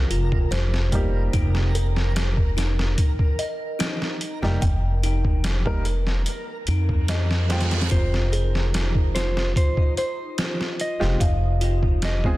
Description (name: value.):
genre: trip hop.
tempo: 73 BPM.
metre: 4/4.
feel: straight.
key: F minor.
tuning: A4 = 440 Hz.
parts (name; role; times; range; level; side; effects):
upright bass; bass; 0.0-12.4 s; F1 to F2; -22 LUFS; equal; tube saturation.
backwards swelling texture; texture; 0.0-12.4 s; Eb4 to Bb4; -36 LUFS; right 2 dB; built-in reverb.
music box; arpeggios; 0.1-12.4 s; Eb4 to G5; -32 LUFS; left 2 dB; tape echo.
trip hop sampler-style drum kit; drums; 0.1-12.4 s; hi-hat, kick drum, snare drum; -24 LUFS; equal; studio reverb.
warm upright piano; accompaniment; 0.9-12.4 s; G3 to G5; -32 LUFS; right 1 dB; harmonic tremolo, vintage 12-bit sampler grit, tape echo.
reverse cymbal; sound effects; 6.9-7.9 s; none; -36 LUFS; right 7 dB; none.
mellow electric guitar; melody; 7.9-12.4 s; C5 to Eb5; -30 LUFS; right 1 dB; dub echo.
room: small room ambience.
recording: dense, heavily limited modern master.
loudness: -20 LUFS.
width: side -18 dB against mid.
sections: 0.0-12.4 A section.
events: reverse cymbal 6.9-7.9.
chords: 0.0 Fmadd9.